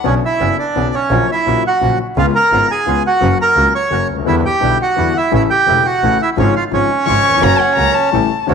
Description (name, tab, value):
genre	tango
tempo	171 BPM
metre	3/4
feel	rubato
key	B minor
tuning	A4 = 440 Hz
part	warm violin	second line	0.0, 7.1-8.5 s	F#5 to C#6	-18 LUFS	left 11 dB	none
part	warm concert grand piano	accompaniment	0.0-8.5 s	E1 to F#4	-19 LUFS	left 12 dB	none
part	bandoneon	stabs	0.0-8.5 s	G3 to G4	-25 LUFS	right 12 dB	none
part	bandoneon	melody	0.1-8.5 s	C#3 to C#6	-14 LUFS	right 3 dB	slapback echo
part	clear double bass	bass	0.1-8.5 s	E1 to E2	-19 LUFS	right 2 dB	none
room	light reverb, studio ambience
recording	1960s-style stereo with parts hard left and right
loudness	-12 LUFS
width	side -6 dB against mid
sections	0.1-8.5 A section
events	none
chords	0.1 Bmadd9; 1.1 F#/A#; 2.2 C#7; 3.2 F#; 4.3 Em7; 5.3 A; 6.4 C#/G#; 7.4 F#; 8.1 A7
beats	| 0.05 0.41 0.76 | 1.11 1.47 1.82 | 2.17 2.52 2.87 | 3.22 3.57 3.92 | 4.27 4.62 4.98 | 5.33 5.68 6.03 | 6.38 6.73 7.08 | 7.43 7.78 8.13 | 8.48